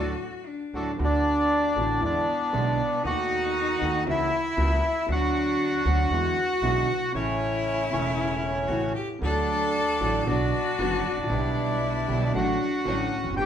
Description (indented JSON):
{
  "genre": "tango",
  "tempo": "116 BPM",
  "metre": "4/4",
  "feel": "rubato",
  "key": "D major",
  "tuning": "A4 = 440 Hz",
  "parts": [
    { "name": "bandoneon", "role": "melody", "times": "0.0-13.5 s", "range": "C#4 to G5", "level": "-26 LUFS", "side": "equal", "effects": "none" },
    { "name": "bright cello", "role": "second line", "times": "0.0-13.5 s", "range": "B3 to A4", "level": "-30 LUFS", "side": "left 4 dB", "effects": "none" },
    { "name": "warm concert grand piano", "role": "accompaniment", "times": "0.0-13.5 s", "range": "E1 to G4", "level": "-30 LUFS", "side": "right 3 dB", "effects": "none" },
    { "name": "warm symphonic string section", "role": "stabs", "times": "0.0-0.9, 9.2-13.5 s", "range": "F#3 to D4", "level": "-36 LUFS", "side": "right 3 dB", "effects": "none" },
    { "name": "upright bass", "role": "bass", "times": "0.0-13.5 s", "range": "E1 to E2", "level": "-31 LUFS", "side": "equal", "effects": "none" }
  ],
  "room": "wet large studio reverb, RT60 1.1 s",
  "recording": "band playing live in one room",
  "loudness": "-23 LUFS",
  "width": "side -9 dB against mid",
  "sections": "1.0-13.5 A section",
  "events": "band accent 0.0-1.0",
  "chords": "0.0 D; 1.0 D6; 2.0 E7; 3.1 B7/D#; 4.1 F#7/C#; 5.1 Bm/D; 6.1 E7; 7.1 A; 9.2 D; 10.3 Bm; 11.3 G/B; 12.3 D/A"
}